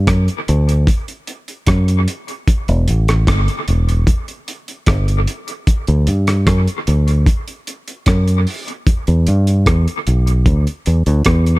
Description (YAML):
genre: roots reggae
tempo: 75 BPM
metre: 4/4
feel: straight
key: E minor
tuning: A4 = 440 Hz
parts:
  - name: fingered electric bass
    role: bass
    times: 0.0-11.6 s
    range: E1 to G2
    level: -13 LUFS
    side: equal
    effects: none
  - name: cloth-damped thuddy drum kit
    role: drums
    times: 0.1-11.6 s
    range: hi-hat, kick drum, rim click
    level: -17 LUFS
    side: equal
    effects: dub echo
room: little or no reverb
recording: echo-heavy mix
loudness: -13 LUFS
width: side -20 dB against mid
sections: 0.0-11.6 A section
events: none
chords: none